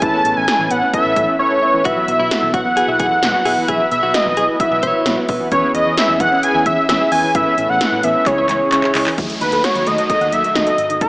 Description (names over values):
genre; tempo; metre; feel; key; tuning
synth-pop; 131 BPM; 4/4; straight; unclear; A4 = 436 Hz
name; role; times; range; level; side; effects
wide unison lead; melody; 0.0-11.1 s; B4 to A5; -15 LUFS; equal; none
mellow synth brass; accompaniment; 0.0-9.1 s; B3 to E5; -21 LUFS; right 1 dB; chorus
phased analog pad; sustained chords; 0.0-11.1 s; C#3 to A4; -27 LUFS; equal; none
soft round pluck; arpeggios; 0.0-11.1 s; D#3 to F#5; -26 LUFS; equal; chorus, digital delay
vintage muted picked electric bass; bass; 0.0-11.1 s; G#1 to E2; -29 LUFS; equal; none
80s electronic pad drums; drums; 0.0-11.1 s; handclaps, hi-hat, kick drum, snare drum; -22 LUFS; equal; none
direct-recorded clean electric guitar; second line; 1.9-5.2 s; E4 to C#5; -23 LUFS; left 1 dB; digital delay
downlifter; sound effects; 9.2-11.1 s; none; -27 LUFS; equal; none
room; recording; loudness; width
moderate lush hall reverb, RT60 1.9 s, digital ambience; small speaker sound; -13 LUFS; side -23 dB against mid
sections
0.0-9.2 A section; 9.2-11.1 B section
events
silent gap 1.4-1.9; drum fill 8.3-9.2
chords
0.0 Aadd9; 1.9 Bsus4; 5.5 E6; 7.3 Aadd9; 8.3 C#m; 9.2 D#dim